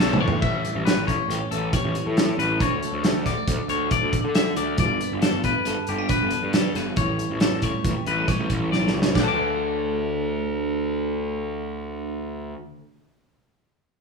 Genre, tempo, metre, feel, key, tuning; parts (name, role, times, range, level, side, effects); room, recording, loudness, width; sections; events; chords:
math rock and midwest emo; 137 BPM; 5/4; straight; D major; A4 = 440 Hz
twangy electric guitar; arpeggios; 0.0-12.7 s; G4 to D6; -27 LUFS; left 8 dB
fuzz picked electric bass; bass; 0.0-12.5 s; G1 to D3; -27 LUFS; left 1 dB; overdrive
loose indie drum kit; drums; 0.1-9.3 s; crash cymbal, hi-hat, kick drum, snare drum, toms; -24 LUFS; right 1 dB
twelve-string electric guitar; accompaniment; 0.4-13.1 s; D2 to A4; -29 LUFS; right 5 dB; phaser
moderate large studio reverb, RT60 1.1 s; band playing live in one room, studio reverb; -21 LUFS; side -4 dB against mid
0.4-9.2 A section; 9.2-13.5 B section
drum fill 0.0-0.4, 8.7-9.2
0.4 A7; 2.6 Dmaj7; 4.8 Gmaj7; 7.0 A7; 9.2 D